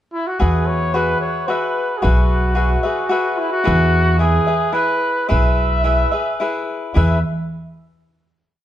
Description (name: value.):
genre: mexican folk, mariachi.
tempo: 110 BPM.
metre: 3/4.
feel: straight.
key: E major.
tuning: A4 = 440 Hz.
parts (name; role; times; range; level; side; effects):
warm trumpet; melody; 0.1-7.2 s; E4 to E5; -20 LUFS; right 1 dB; none.
cavaquinho; accompaniment; 0.4-7.2 s; E4 to E5; -21 LUFS; left 3 dB; none.
upright bass; bass; 0.4-7.2 s; B1 to E2; -17 LUFS; equal; none.
room: light reverb.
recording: close, detailed microphones.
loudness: -15 LUFS.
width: side -12 dB against mid.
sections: 0.0-0.4 pickup bar; 0.4-7.0 A section; 7.0-8.6 final chord.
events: none.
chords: 0.4 Eadd9; 3.7 E.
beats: | 0.41 0.95 1.50 | 2.04 2.58 3.12 | 3.67 4.21 4.75 | 5.30 5.85 6.40 | 6.95.